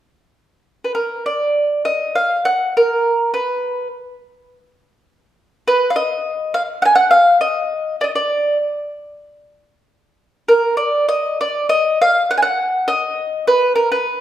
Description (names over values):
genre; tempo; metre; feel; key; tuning
fado; 91-105 BPM; 4/4; rubato; Eb harmonic minor; A4 = 440 Hz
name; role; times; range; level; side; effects
mandolin; solo; 0.8-14.2 s; Bb4 to Ab5; -15 LUFS; equal; none
room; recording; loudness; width
wet recital hall reverb, RT60 1.4 s; minimal, uncompressed stereo recording; -15 LUFS; side -12 dB against mid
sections
0.9-10.5 A section; 10.5-14.2 B section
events
none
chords
none